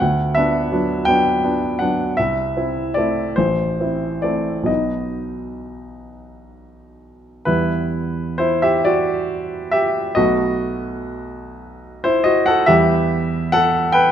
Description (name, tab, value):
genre	classical, romantic nocturne for solo piano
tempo	42-58 BPM (dotted quarters)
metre	6/8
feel	rubato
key	E minor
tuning	A4 = 440 Hz
part	warm baby grand piano	solo	0.0-14.1 s	A1 to G5	-16 LUFS	equal	none
room	moderate scoring stage reverb, RT60 2.0 s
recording	close, detailed microphones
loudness	-16 LUFS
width	side -9 dB against mid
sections	0.0-7.5 A section; 7.5-14.1 B section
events	none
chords	0.0 Bm/D; 2.2 Am/C; 3.4 Am; 4.7 B; 7.5 Em; 10.2 B7; 12.7 Em